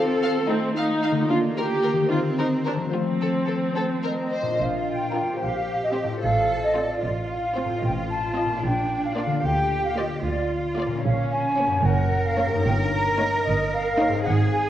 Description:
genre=cinematic, playful, whimsical film cue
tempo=74 BPM (dotted quarters)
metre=6/8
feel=straight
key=Bb major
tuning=A4 = 440 Hz
part: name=rich studio violin section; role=melody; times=0.0-14.2 s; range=A4 to F5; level=-34 LUFS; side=left 2 dB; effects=none
part: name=rich studio violin section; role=second line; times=0.0-14.2 s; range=C4 to G4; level=-32 LUFS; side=left 2 dB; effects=none
part: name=rich studio viola section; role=accompaniment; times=0.0-14.2 s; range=Bb3 to A4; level=-27 LUFS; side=right 1 dB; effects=none
part: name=concert harp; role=arpeggios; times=0.0-14.7 s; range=Gb2 to Eb5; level=-29 LUFS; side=left 5 dB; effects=none
part: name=rich studio cello section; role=bass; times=0.0-14.7 s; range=A3 to Bb4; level=-28 LUFS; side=right 2 dB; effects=none
part: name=mellow small flute group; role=second line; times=3.8-14.7 s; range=C5 to Bb5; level=-26 LUFS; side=equal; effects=none
part: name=clear studio double bass section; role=bass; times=4.6-14.7 s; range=Gb1 to D2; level=-27 LUFS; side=right 3 dB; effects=none
room=wet scoring stage reverb, RT60 1.7 s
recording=worn, warbling old tape, cassette tape, warbly pitch drift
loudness=-21 LUFS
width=side -12 dB against mid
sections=0.0-4.6 A section; 4.6-14.7 A section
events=none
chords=0.0 F7/Eb; 1.3 Bb/D; 2.1 Cm7/Eb; 2.9 F; 4.6 Bb; 5.4 C5/Bb; 6.2 F/A; 7.8 F7/A; 8.6 Bb; 9.4 Bb/D; 11.0 Bbm; 11.8 Gb; 12.6 Eb7/G

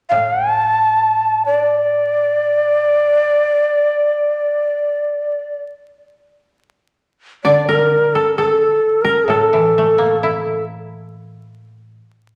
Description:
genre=japanese traditional, Japanese chamber music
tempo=free time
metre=none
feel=none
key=unclear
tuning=A4 = 441 Hz
part: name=breathy bright shakuhachi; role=melody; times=0.1-10.6 s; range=A4 to A5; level=-16 LUFS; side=equal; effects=none
part: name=koto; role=accompaniment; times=0.1-3.4, 7.5-12.0 s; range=A2 to E4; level=-25 LUFS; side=equal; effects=none
part: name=koto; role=second line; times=7.4-11.2 s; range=A4 to D5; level=-23 LUFS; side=equal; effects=none
room=wet scoring stage reverb, RT60 1.5 s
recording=vinyl crackle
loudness=-16 LUFS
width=mono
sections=0.0-7.5 A section; 7.5-12.4 B section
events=none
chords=none

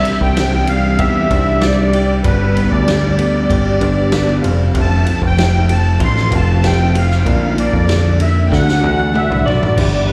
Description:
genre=folk rock and heartland rock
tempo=96 BPM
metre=4/4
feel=straight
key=G mixolydian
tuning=A4 = 439 Hz
part: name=musette accordion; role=melody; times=0.0-10.1 s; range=B4 to C6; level=-22 LUFS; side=equal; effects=slapback echo
part: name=overdriven reed electric piano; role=accompaniment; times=0.0-9.4 s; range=D4 to A5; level=-30 LUFS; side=equal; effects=none
part: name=picked steel-string acoustic guitar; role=accompaniment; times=0.0-10.1 s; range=F2 to G4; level=-25 LUFS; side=equal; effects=none
part: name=electric guitar through a small old amp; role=riff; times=0.0-10.1 s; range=F2 to G4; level=-22 LUFS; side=equal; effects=tremolo, slapback echo
part: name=picked electric bass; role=bass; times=0.0-10.1 s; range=F1 to F2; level=-18 LUFS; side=equal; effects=none
part: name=vintage drum kit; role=drums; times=0.1-9.9 s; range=crash cymbal, kick drum, ride cymbal, snare drum, toms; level=-22 LUFS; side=equal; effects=none
room=light reverb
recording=live gig heard through the venue's PA, recital hall reverb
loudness=-14 LUFS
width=mono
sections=0.0-9.8 A section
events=reed electric piano fill 3.8-4.7; drum fill 8.5-9.8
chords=0.0 Cadd9; 2.2 G; 4.4 F; 7.3 Bb; 8.5 D

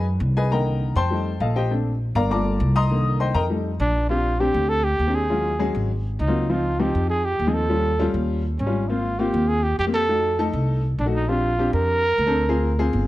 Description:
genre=Afro-Cuban jazz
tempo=200 BPM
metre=4/4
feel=straight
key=Bb major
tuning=A4 = 440 Hz
part: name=warm upright piano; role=accompaniment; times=0.0-13.1 s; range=D3 to Eb6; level=-24 LUFS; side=left 3 dB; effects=none
part: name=upright bass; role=bass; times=0.0-13.1 s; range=G1 to F#2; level=-23 LUFS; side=equal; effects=none
part: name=breathy trumpet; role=melody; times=3.8-13.0 s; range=Db4 to Bb4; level=-24 LUFS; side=right 2 dB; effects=none
room=small room ambience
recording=dry, close 1970s-style studio recording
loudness=-19 LUFS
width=side -16 dB against mid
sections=0.0-4.1 A section; 4.1-13.1 B section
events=upright piano solo 0.0-4.1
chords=0.0 B6; 0.5 Cm7; 1.1 F9; 1.7 Bbmaj9; 2.3 Gm9; 2.9 Cm9; 3.5 F9; 4.1 Bb69; 5.3 Ebm11; 5.9 Ab13; 6.5 Dbmaj9; 7.7 Eb9; 8.9 Ab69; 10.1 F7b9; 11.3 Bb69; 12.5 Dm7b5

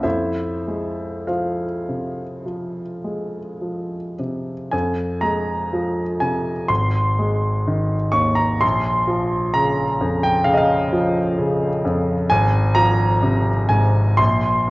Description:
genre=classical, romantic character piece for solo piano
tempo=48-67 BPM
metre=4/4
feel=rubato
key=F minor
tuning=A4 = 440 Hz
part: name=clear grand piano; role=solo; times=0.0-14.7 s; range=Ab1 to Db6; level=-18 LUFS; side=equal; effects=none
room=wet recital hall reverb, RT60 1.6 s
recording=worn, warbling old tape, cassette tape, warbly pitch drift, nothing above 7.9 kHz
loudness=-18 LUFS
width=side -21 dB against mid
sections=0.0-4.7 A section; 4.7-14.7 A section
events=none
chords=0.0 Fm; 6.7 Ab; 8.6 Bbm; 12.3 Fm/Ab; 14.2 Bbsus2

